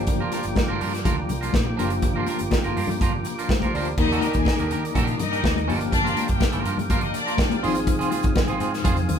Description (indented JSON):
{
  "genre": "disco",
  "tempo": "123 BPM",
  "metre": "4/4",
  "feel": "straight",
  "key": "unclear",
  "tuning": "A4 = 440 Hz",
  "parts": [
    { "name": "tine electric piano", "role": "accompaniment", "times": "0.0-9.2 s", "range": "Eb3 to D5", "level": "-28 LUFS", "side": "left 4 dB", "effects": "fast stereo tremolo" },
    { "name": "twangy electric guitar", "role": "accompaniment", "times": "0.0-9.1 s", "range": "C4 to Bb4", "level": "-29 LUFS", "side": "right 5 dB", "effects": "none" },
    { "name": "tonewheel organ", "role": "sustained chords", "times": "0.0-9.2 s", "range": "F4 to Eb6", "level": "-32 LUFS", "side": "right 1 dB", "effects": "overdrive, slow rotary speaker" },
    { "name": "fingered electric bass", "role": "bass", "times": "0.0-9.2 s", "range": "Gb1 to Eb3", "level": "-29 LUFS", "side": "right 1 dB", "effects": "none" },
    { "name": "modern studio drum kit", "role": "drums", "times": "0.1-9.2 s", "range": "crash cymbal, hi-hat, kick drum, snare drum", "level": "-24 LUFS", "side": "equal", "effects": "none" },
    { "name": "congas", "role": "percussion", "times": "0.3-9.2 s", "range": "none", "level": "-31 LUFS", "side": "left 4 dB", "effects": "none" },
    { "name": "clear studio string section", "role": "second line", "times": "4.0-7.6 s", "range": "D4 to Ab5", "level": "-28 LUFS", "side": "left 3 dB", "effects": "none" }
  ],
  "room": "moderate large studio reverb, RT60 0.9 s",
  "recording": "band playing live in one room",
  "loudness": "-20 LUFS",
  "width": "side -8 dB against mid",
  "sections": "0.0-4.0 A section; 4.0-9.2 B section",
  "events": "none",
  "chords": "0.0 Gm7; 4.0 Ebmaj7; 5.7 Gm7; 7.6 Ab6"
}